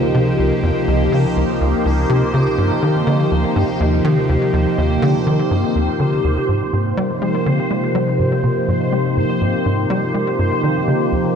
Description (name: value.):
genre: ambient, sequencer-driven space music.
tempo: 123 BPM.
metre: 4/4.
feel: straight.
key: Eb major.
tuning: A4 = 437 Hz.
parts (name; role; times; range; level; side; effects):
phased analog pad; sustained chords; 0.0-11.4 s; Db2 to G4; -18 LUFS; equal; phaser, chorus.
tight sequencer bass; riff; 0.0-11.3 s; Db2 to Ab3; -19 LUFS; equal; ensemble chorus, ping-pong delay.
bubbling stepped-filter texture; texture; 0.0-11.4 s; C5; -26 LUFS; right 1 dB; chorus, built-in reverb.
room: moderate plate reverb, RT60 3.4 s.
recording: none.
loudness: -15 LUFS.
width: side -7 dB against mid.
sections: 0.0-11.4 A section.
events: fade-in on synth texture 0.0-11.4.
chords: 0.0 Dbmaj7; 2.6 Ebmaj7; 6.5 Abmaj7; 10.4 Ebmaj7.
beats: 0.14 | 0.63 1.12 1.61 2.10 | 2.58 3.07 3.56 4.05 | 4.53 5.02 5.51 6.00 | 6.49 6.97 7.46 7.95 | 8.44 8.92 9.41 9.90 | 10.39 10.88.